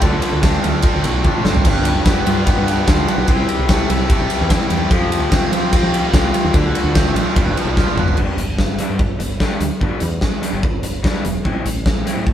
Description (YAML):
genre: indie rock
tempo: 147 BPM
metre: 4/4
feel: straight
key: G mixolydian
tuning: A4 = 440 Hz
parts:
  - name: biting overdriven guitar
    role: riff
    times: 0.0-8.2 s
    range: G2 to F4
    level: -23 LUFS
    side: right 4 dB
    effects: none
  - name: raw garage guitar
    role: riff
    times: 0.0-12.3 s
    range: E3 to A4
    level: -22 LUFS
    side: left 4 dB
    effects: overdrive
  - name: woody fretless electric bass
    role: bass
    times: 0.0-12.3 s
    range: E1 to F3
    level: -21 LUFS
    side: equal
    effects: none
  - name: big rock drum kit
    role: drums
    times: 0.0-12.3 s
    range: crash cymbal, hi-hat, kick drum, ride cymbal, snare drum, toms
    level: -17 LUFS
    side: equal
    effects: none
room: light reverb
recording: band playing live in one room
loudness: -14 LUFS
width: side -10 dB against mid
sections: 0.0-8.2 A section; 8.2-12.3 B section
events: drum fill 1.3-1.7, 7.8-8.2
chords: 0.0 Dm7; 1.7 G7; 3.3 C6; 4.9 Fsus2; 6.5 Dm7; 7.4 G7; 8.2 G; 11.4 Am